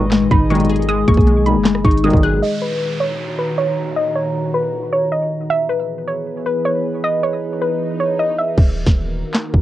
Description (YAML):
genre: hip hop, trap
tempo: 156 BPM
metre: 4/4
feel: half-time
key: Eb phrygian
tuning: A4 = 439 Hz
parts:
  - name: soft round pluck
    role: melody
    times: 0.0-8.6 s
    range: Cb5 to Gb6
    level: -20 LUFS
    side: equal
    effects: chorus, low-pass filter, tape echo
  - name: warm velvety synth lead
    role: second line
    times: 0.0-2.4 s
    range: Ab4 to Cb5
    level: -25 LUFS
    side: equal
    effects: chorus, tape echo
  - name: glassy wavetable pluck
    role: accompaniment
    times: 0.0-2.4 s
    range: Bb2 to Ab4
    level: -18 LUFS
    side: left 4 dB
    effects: chorus
  - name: warbly tape-like pad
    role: sustained chords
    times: 0.0-9.6 s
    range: Bb2 to Bb5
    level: -25 LUFS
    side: right 1 dB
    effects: chorus, built-in reverb, low-pass filter
  - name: warm 808-style bass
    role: bass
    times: 0.0-2.4, 8.6-9.6 s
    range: Eb1 to Cb2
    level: -19 LUFS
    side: equal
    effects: none
  - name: trap drum kit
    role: drums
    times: 0.1-2.3, 8.6-9.6 s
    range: crash cymbal, handclaps, hi-hat, kick drum, rim click, snare drum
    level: -15 LUFS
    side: equal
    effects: vintage 12-bit sampler grit
  - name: dark brass ensemble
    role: stabs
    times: 0.5-2.4 s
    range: Cb2 to Eb3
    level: -20 LUFS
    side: right 2 dB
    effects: none
  - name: downlifter and swell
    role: sound effects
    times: 2.4-8.6 s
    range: none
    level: -33 LUFS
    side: right 2 dB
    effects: none
room: light reverb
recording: worn, warbling old tape, cassette tape, warbly pitch drift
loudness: -15 LUFS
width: side -14 dB against mid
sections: 0.0-2.4 A section; 2.4-8.6 B section; 8.6-9.6 C section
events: filter sweep 2.4-8.6; swell 5.6-8.6; hi-hats muted 8.6-9.6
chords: 0.0 Abmadd9; 2.4 Ebm; 5.5 E; 8.6 Ebm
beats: 0.12 0.50 | 0.89 1.27 1.66 2.04 | 2.42 2.81 3.19 3.58 | 3.96 4.35 4.73 5.12 | 5.50 5.88 6.27 6.66 | 7.04 7.42 7.81 8.19 | 8.58 8.96 9.35